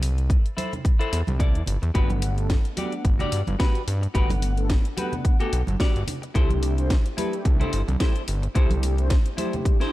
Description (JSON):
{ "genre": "nu-disco, nu disco", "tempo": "109 BPM", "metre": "4/4", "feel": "swing 55% on 16ths", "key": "unclear", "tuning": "A4 = 440 Hz", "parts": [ { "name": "clean electric guitar", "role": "riff", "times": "0.0-9.9 s", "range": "E4 to D5", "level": "-32 LUFS", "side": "left 2 dB", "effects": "wide subtle chorus, dub echo" }, { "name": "fat analog bass", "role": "bass", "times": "0.0-9.2 s", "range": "G1 to G2", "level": "-24 LUFS", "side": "equal", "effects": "tube saturation" }, { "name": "house drum kit", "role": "drums", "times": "0.0-9.9 s", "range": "hi-hat, snare drum", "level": "-33 LUFS", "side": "left 1 dB", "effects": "none" }, { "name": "electronic kick drum", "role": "drums", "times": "0.3-9.8 s", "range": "none", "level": "-21 LUFS", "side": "equal", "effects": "none" }, { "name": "congas", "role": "percussion", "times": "0.6-9.6 s", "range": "none", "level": "-33 LUFS", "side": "right 3 dB", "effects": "none" }, { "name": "mellow synth brass", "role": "accompaniment", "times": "1.9-9.9 s", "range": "A3 to F#5", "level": "-32 LUFS", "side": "left 1 dB", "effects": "chorus, dub echo" } ], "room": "digital ambience", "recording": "dark, warm production", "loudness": "-21 LUFS", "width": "side -16 dB against mid", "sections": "0.0-9.9 A section", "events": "none", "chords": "0.0 C6; 1.9 Gmaj7; 6.4 C6" }